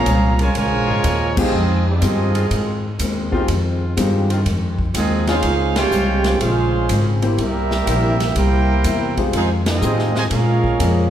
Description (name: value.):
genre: jazz, big band swing.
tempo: 123 BPM.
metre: 4/4.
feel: swing 68% on 8ths.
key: F minor.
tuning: A4 = 441 Hz.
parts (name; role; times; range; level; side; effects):
clear trumpet section; melody; 0.0-11.1 s; C4 to Bb5; -23 LUFS; right 2 dB; none.
bright trombone section; second line; 0.0-11.1 s; C3 to Ab4; -23 LUFS; right 4 dB; none.
warm concert grand piano; accompaniment; 0.0-11.1 s; Ab3 to Eb5; -24 LUFS; left 3 dB; none.
clear trombone section; sustained chords; 0.0-10.0 s; Db3 to C5; -29 LUFS; left 1 dB; none.
upright bass; bass; 0.0-11.1 s; Ab1 to Bb2; -19 LUFS; equal; none.
fingerpicked steel-string acoustic guitar; accompaniment; 0.1-11.1 s; F2 to E4; -25 LUFS; left 3 dB; none.
swinging big-band drum kit; drums; 0.1-10.9 s; crash cymbal, hi-hat, kick drum, ride cymbal, snare drum; -26 LUFS; equal; none.
room: wet large studio reverb, RT60 1.2 s.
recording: heard from further back in the room.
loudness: -16 LUFS.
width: side -10 dB against mid.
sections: 0.0-11.1 A section.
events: band accent 1.3, 5.7, 9.6.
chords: 0.0 Bbm7; 1.5 Fm7; 5.4 Dbmaj7; 7.4 C7; 9.3 Fm7; 10.3 Bbm7.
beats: 0.07 0.55 1.04 | 1.53 2.02 2.50 2.99 | 3.48 3.97 4.45 4.94 | 5.43 5.92 6.41 6.89 | 7.38 7.87 8.36 8.84 | 9.33 9.82 10.31 10.79.